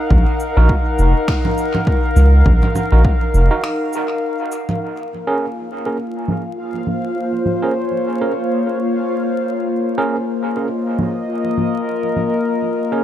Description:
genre	ambient dub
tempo	102 BPM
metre	4/4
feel	swing 57% on 16ths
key	Bb minor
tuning	A4 = 440 Hz
part	warbly tape-like pad	sustained chords	0.0-13.0 s	Bb3 to Gb5	-20 LUFS	left 2 dB	chorus, built-in reverb
part	round analog bass	bass	0.1-3.5 s	F1 to Db2	-11 LUFS	equal	tube saturation
part	electronic kick drum	drums	0.1-3.2 s	none	-18 LUFS	equal	overdrive
part	electronic cabasa, finger snaps and congas	drums	0.4-12.3 s	none	-25 LUFS	right 2 dB	overdrive, low-pass filter on perc, low-pass filter on snare, dub echo
part	overdriven tine electric piano	stabs	0.6-13.0 s	Db4 to Bb4	-24 LUFS	right 3 dB	fast tremolo, dub echo
part	bubbling stepped-filter texture	texture	4.8-13.0 s	F4 to F5	-27 LUFS	right 2 dB	chorus, built-in reverb
room	little or no reverb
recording	echo-heavy mix, vinyl crackle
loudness	-15 LUFS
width	side -11 dB against mid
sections	0.0-4.8 A section; 4.8-13.0 B section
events	break 3.6-4.8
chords	0.0 Ebm; 4.8 Bbm

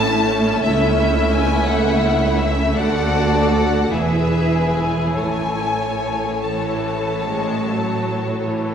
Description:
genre	classical, slow romantic movement for string orchestra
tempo	47-57 BPM (dotted quarters)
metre	12/8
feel	rubato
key	A major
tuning	A4 = 441 Hz
part	rich studio violin section	melody	0.0-8.7 s	E5 to A5	-24 LUFS	left 4 dB	none
part	warm studio violin section	second line	0.0-8.7 s	E4 to E5	-23 LUFS	left 2 dB	none
part	warm studio viola section	accompaniment	0.0-8.7 s	E3 to F#4	-22 LUFS	right 2 dB	none
part	rich symphonic cello section	bass	0.0-8.7 s	C#2 to A2	-23 LUFS	right 1 dB	none
part	warm chamber double bass section	bass	0.0-8.7 s	E1 to D2	-24 LUFS	right 2 dB	none
room	wet scoring stage reverb, RT60 1.7 s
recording	heard from further back in the room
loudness	-16 LUFS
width	side -8 dB against mid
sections	0.0-8.7 A section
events	none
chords	0.0 A; 0.6 A/C#; 2.8 D; 3.9 E; 5.2 A

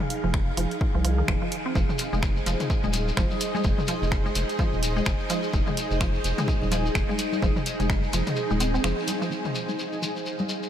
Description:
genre	minimal techno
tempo	127 BPM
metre	4/4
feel	swing 59% on 16ths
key	F minor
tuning	A4 = 441 Hz
part	electronic toms and congas	percussion	0.0-10.5 s	none	-34 LUFS	left 2 dB	overdrive, analog delay
part	granular cloud pad	texture	0.0-10.7 s	Eb4 to F5	-30 LUFS	equal	built-in reverb, analog chorus, sidechain pumping
part	punchy analog drum machine	drums	0.1-9.2 s	finger snaps, hi-hat	-34 LUFS	right 1 dB	none
part	resonant blip pluck	riff	0.2-10.4 s	Eb3 to C4	-31 LUFS	equal	chorus, sidechain pumping, tape echo
part	round analog bass	bass	0.2-8.9 s	Eb1 to C2	-27 LUFS	equal	sidechain pumping
part	electronic kick drum	drums	0.3-8.0 s	none	-27 LUFS	equal	none
part	shekere	percussion	1.8-10.7 s	none	-35 LUFS	left 4 dB	none
part	pulsing gated texture	texture	1.8-10.7 s	C5	-38 LUFS	right 4 dB	chorus, built-in reverb, sidechain pumping
room	moderate huge ambient reverb, RT60 7.4 s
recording	dreamy mix soaked in reverb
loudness	-23 LUFS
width	side -10 dB against mid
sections	0.0-9.3 A section; 9.3-10.7 B section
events	kick drops out 8.4-9.3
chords	0.0 Fm7

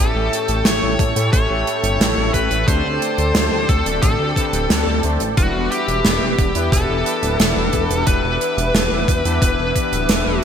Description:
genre	synthwave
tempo	89 BPM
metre	4/4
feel	straight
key	E minor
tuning	A4 = 441 Hz
part	high-gain lead guitar	melody	0.0-10.4 s	F#4 to C#5	-21 LUFS	left 1 dB	distortion, ping-pong delay, shimmer reverb
part	soft supersaw	sustained chords	0.0-10.4 s	A4 to D6	-25 LUFS	right 2 dB	sidechain pumping, shimmer reverb
part	analog synth brass	stabs	0.0-10.4 s	A2 to C5	-25 LUFS	left 3 dB	chorus, cassette tape, shimmer reverb
part	chorused synth bass	bass	0.0-10.4 s	D1 to A2	-22 LUFS	equal	none
part	gated 80s drum kit	drums	0.3-10.2 s	hi-hat, snare drum	-21 LUFS	right 2 dB	gated reverb
part	electronic kick drum	drums	1.0-9.9 s	none	-18 LUFS	equal	overdrive
room	moderate lush hall reverb, RT60 2.3 s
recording	bright 1980s-style digital production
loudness	-15 LUFS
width	side -8 dB against mid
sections	0.0-10.4 A section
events	none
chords	0.0 A7; 2.7 D7sus4; 5.4 Em7

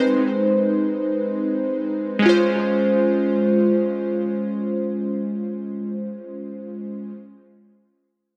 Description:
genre	afrobeats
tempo	free time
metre	none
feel	none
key	Db major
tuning	A4 = 440 Hz
part	glassy digital keys	accompaniment	0.0-7.1 s	Ab3 to C5	-22 LUFS	equal	chorus, analog delay
room	light reverb, digital ambience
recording	echo-heavy mix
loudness	-21 LUFS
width	mono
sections	0.0-2.2 A section; 2.2-4.6 B section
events	none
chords	0.0 Ab; 2.2 Dbmaj7

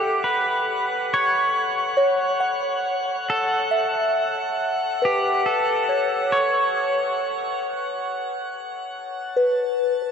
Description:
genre	ambient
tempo	69 BPM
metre	3/4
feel	straight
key	unclear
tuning	A4 = 441 Hz
part	pedal steel guitar	melody	0.0-7.6 s	G4 to C#5	-23 LUFS	equal	tape echo
part	soft synth bell	arpeggios	0.0-10.1 s	A4 to F#5	-24 LUFS	equal	chorus, phaser, tape echo
part	drifting glass-harmonics texture	texture	0.0-10.1 s	F#5 to A6	-28 LUFS	left 2 dB	chorus, built-in reverb
room	wet huge ambient reverb, RT60 7.4 s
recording	in a vast, echoing space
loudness	-20 LUFS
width	side -6 dB against mid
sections	0.0-10.1 A section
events	none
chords	0.0 A; 8.9 N.C.

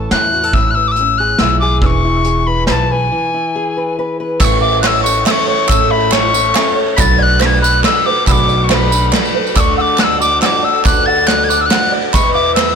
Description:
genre	indie folk with a building arrangement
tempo	140 BPM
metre	3/4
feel	straight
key	A major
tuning	A4 = 440 Hz
part	fingerpicked acoustic archtop guitar	accompaniment	0.0-5.7 s	A2 to B4	-20 LUFS	left 2 dB	none
part	upright bass	bass	0.0-12.8 s	E1 to E2	-18 LUFS	right 1 dB	none
part	breathy bright tin whistle	melody	0.1-12.8 s	G#5 to B6	-15 LUFS	left 4 dB	tape echo
part	soft brush drum kit	drums	0.1-12.7 s	crash cymbal, hi-hat, kick drum, ride cymbal, snare drum	-16 LUFS	right 1 dB	soft clipping on snare
part	clear grand piano	accompaniment	4.4-12.8 s	A1 to E5	-24 LUFS	right 7 dB	none
part	picked twelve-string acoustic guitar	accompaniment	4.4-12.8 s	E2 to A4	-22 LUFS	left 8 dB	none
part	dark upright piano	arpeggios	4.4-12.8 s	B4 to D6	-19 LUFS	right 8 dB	none
part	group handclap	percussion	4.4-12.7 s	none	-23 LUFS	right 6 dB	none
part	tambourine	percussion	4.4-12.3 s	none	-23 LUFS	right 11 dB	none
room	light reverb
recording	blown-out, overdriven recording, overdrive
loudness	-11 LUFS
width	side -6 dB against mid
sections	0.0-4.4 A section; 4.4-12.8 B section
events	break 3.1-4.4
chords	0.0 Amaj7; 1.8 E; 4.4 A; 7.0 Bm7; 9.6 D; 12.1 E

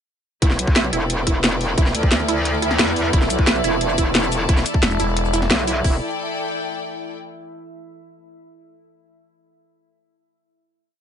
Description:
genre	dark technical drum and bass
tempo	177 BPM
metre	4/4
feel	straight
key	E minor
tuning	A4 = 441 Hz
part	deep dark ambient pad	sustained chords	1.7-6.0 s	E4 to E5	-28 LUFS	equal	chorus, built-in reverb, sidechain pumping
part	wide unison pluck	arpeggios	0.4-6.0 s	E4 to E5	-27 LUFS	right 4 dB	phaser, sidechain pumping, ping-pong delay
part	metallic wobble bass	bass	0.4-6.0 s	E1 to E2	-22 LUFS	equal	chorus, overdrive, sidechain pumping
part	drum and bass drum kit	drums	0.4-5.9 s	hi-hat, kick drum	-18 LUFS	equal	overdrive
part	drum and bass drum kit	drums	0.4-5.7 s	hi-hat, shaker, snare drum	-20 LUFS	equal	overdrive
part	bright symphonic string section	texture	0.4-7.2 s	E4 to A5	-27 LUFS	left 3 dB	sidechain pumping
part	growling FM bass	bass	4.8-5.5 s	E1	-21 LUFS	equal	none
room	little or no reverb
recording	nothing above 11.0 kHz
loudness	-17 LUFS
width	side -8 dB against mid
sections	0.4-5.8 drop; 5.8-7.2 final chord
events	drop 0.4-5.8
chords	0.4 Em

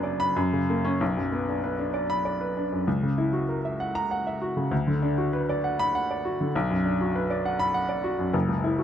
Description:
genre	classical, virtuoso piano study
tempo	98 BPM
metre	3/4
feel	rubato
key	B minor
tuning	A4 = 437 Hz
part	warm baby grand piano	solo	0.0-8.8 s	F#1 to B5	-24 LUFS	equal	none
room	moderate studio ambience, RT60 0.5 s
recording	dark, warm production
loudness	-24 LUFS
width	side -9 dB against mid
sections	0.0-1.0 A section; 1.0-8.8 B section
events	none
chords	0.4 F#; 1.0 Bm; 2.9 F#7/C#; 4.7 Bm/D; 6.5 Bm

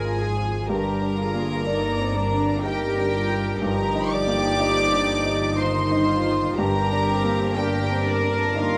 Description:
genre	cinematic, emotional film score for orchestra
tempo	61 BPM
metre	3/4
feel	rubato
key	unclear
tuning	A4 = 440 Hz
part	warm symphonic violin section	melody	0.0-8.8 s	D5 to D6	-31 LUFS	equal	none
part	warm studio violin section	second line	0.0-8.8 s	D4 to D5	-31 LUFS	equal	none
part	dark symphonic viola section	accompaniment	0.0-8.8 s	Eb3 to D5	-32 LUFS	equal	none
part	warm grand piano	accompaniment	0.0-8.8 s	F2 to D5	-29 LUFS	equal	none
part	rich symphonic cello section	bass	0.0-8.8 s	D4 to Bb4	-30 LUFS	equal	none
part	rich symphonic double bass section	bass	0.0-8.8 s	G1 to Ab1	-30 LUFS	equal	none
room	moderate recital hall reverb, RT60 1.8 s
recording	close, detailed microphones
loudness	-23 LUFS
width	mono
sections	0.0-8.8 A section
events	none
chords	0.0 Fm; 0.7 Gm; 3.6 Ebadd9/G; 6.6 Gm

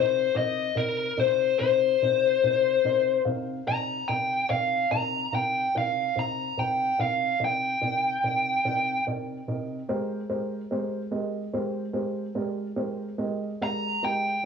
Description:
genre	blues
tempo	48 BPM (dotted quarters)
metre	12/8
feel	straight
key	C minor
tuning	A4 = 440 Hz
part	biting lead guitar	melody	0.0-14.4 s	Bb4 to Bb5	-24 LUFS	left 4 dB	overdrive
part	dark upright piano	accompaniment	0.0-14.5 s	C3 to D6	-31 LUFS	right 1 dB	cassette tape
room	moderate spring reverb, RT60 2.7 s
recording	home recording on cassette, small room ambience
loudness	-24 LUFS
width	side -6 dB against mid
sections	0.0-14.5 A section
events	lead electric guitar solo 0.0-14.5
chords	0.0 Cm7; 9.9 Abmaj7

